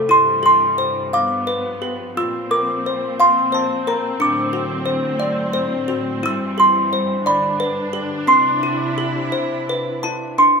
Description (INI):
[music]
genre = children's music, lullaby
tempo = 58 BPM (dotted quarters)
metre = 6/8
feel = rubato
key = C major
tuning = A4 = 442 Hz
[part]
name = music box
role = melody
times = 0.0-10.6 s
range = C4 to E6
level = -17 LUFS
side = equal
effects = none
[part]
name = rich studio string section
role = sustained chords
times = 0.0-10.4 s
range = G2 to E4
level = -24 LUFS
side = equal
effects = none
[sound]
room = moderate large studio reverb, RT60 1.2 s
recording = band playing live in one room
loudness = -16 LUFS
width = side -5 dB against mid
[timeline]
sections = 0.0-10.4 A section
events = none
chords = 0.1 C/G; 1.1 G7; 2.2 Bbsus2; 4.2 D7/A; 6.2 C/G; 7.3 G; 8.3 Cmaj7